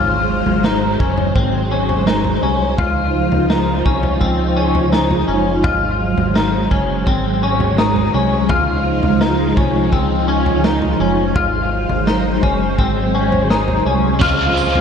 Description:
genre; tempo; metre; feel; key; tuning
dream pop; 84 BPM; 4/4; straight; Db major; A4 = 440 Hz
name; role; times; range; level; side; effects
string machine, violas; sustained chords; 0.0-14.8 s; F3 to Ab5; -18 LUFS; right 1 dB; phaser, ensemble chorus
clean electric guitar; arpeggios; 0.0-14.8 s; C4 to F4; -19 LUFS; left 4 dB; ensemble chorus, tape echo
fat analog bass; bass; 0.0-14.8 s; Gb1 to Db2; -21 LUFS; equal; none
raw garage drum kit; drums; 0.5-14.8 s; kick drum, snare drum, tambourine, toms; -21 LUFS; equal; none
vibraphone with medium hard mallets; texture; 2.8-14.8 s; C5 to F5; -32 LUFS; right 4 dB; none
overdriven electric guitar; accompaniment; 14.2-14.8 s; Db3 to F4; -17 LUFS; right 5 dB; harmonic tremolo, analog chorus, tape echo
room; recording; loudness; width
moderate echo chamber reverb, RT60 1.6 s, studio reverb; echo-heavy mix; -14 LUFS; side -7 dB against mid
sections
0.0-14.2 A section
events
none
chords
0.0 Dbmaj7

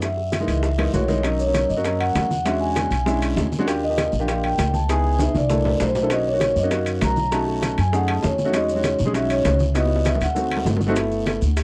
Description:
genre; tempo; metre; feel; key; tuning
Afro-Cuban jazz; 197 BPM; 4/4; straight; B major; A4 = 439 Hz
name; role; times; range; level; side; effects
vibraphone with soft mallets; melody; 0.0-10.6 s; C5 to A#5; -26 LUFS; equal; tape echo
warm grand piano; accompaniment; 0.0-11.4 s; E3 to A4; -27 LUFS; equal; none
upright bass; bass; 0.0-11.6 s; G1 to F#2; -26 LUFS; equal; none
bongos; percussion; 0.0-11.6 s; none; -33 LUFS; equal; none
congas; percussion; 0.0-11.6 s; none; -32 LUFS; equal; none
guiro; percussion; 0.0-11.6 s; none; -44 LUFS; equal; none
maracas; percussion; 0.0-11.6 s; none; -43 LUFS; equal; none
timbales; percussion; 0.0-11.6 s; none; -32 LUFS; equal; none
room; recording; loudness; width
little or no reverb; dry, close 1970s-style studio recording; -21 LUFS; mono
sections
0.0-1.2 A section; 1.2-11.0 B section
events
drum fill 0.8-1.2, 5.2-6.1, 9.8-11.0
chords
0.0 F#13; 1.2 Bmaj9; 2.5 E13; 3.7 D#maj9; 4.9 C#m9; 5.5 C13; 6.1 Bmaj9; 7.3 B9; 8.5 Emaj13; 9.8 C#m11; 10.4 D7b9; 11.0 G69

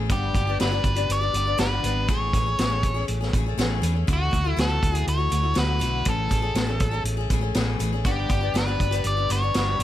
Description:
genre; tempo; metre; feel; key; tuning
folk rock and heartland rock; 121 BPM; 4/4; straight; A major; A4 = 439 Hz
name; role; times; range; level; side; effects
picked steel-string acoustic guitar; accompaniment; 0.0-9.8 s; G2 to G#4; -29 LUFS; left 8 dB; none
hollow-body short-scale fingered electric bass; bass; 0.0-9.8 s; G1 to E2; -25 LUFS; right 1 dB; none
nasal lead guitar with a parked wah; melody; 0.1-9.8 s; F#4 to D5; -27 LUFS; right 1 dB; overdrive
vintage drum kit; drums; 0.1-9.8 s; hi-hat, kick drum, snare drum; -26 LUFS; right 1 dB; none
room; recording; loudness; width
little or no reverb; none; -21 LUFS; side -13 dB against mid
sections
0.0-9.8 A section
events
none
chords
0.1 G; 2.1 Amaj7; 4.1 Dadd9; 6.1 Amaj7; 8.0 G

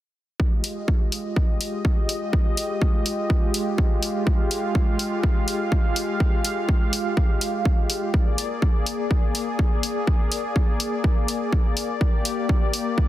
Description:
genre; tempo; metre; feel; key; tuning
deep house; 124 BPM; 4/4; swing 60% on 16ths; F dorian; A4 = 440 Hz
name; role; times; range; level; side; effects
warm analog pad; sustained chords; 0.4-13.1 s; Ab3 to F5; -26 LUFS; left 1 dB; chorus, tremolo, sidechain pumping
electronic kick drum; drums; 0.4-13.1 s; none; -20 LUFS; equal; overdrive
electronic hi-hat; drums; 0.6-12.9 s; none; -28 LUFS; left 1 dB; none
room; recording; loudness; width
light reverb; dense, heavily limited modern master; -20 LUFS; side -14 dB against mid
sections
0.4-13.1 A section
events
none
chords
0.4 Fm9; 8.1 Bb7

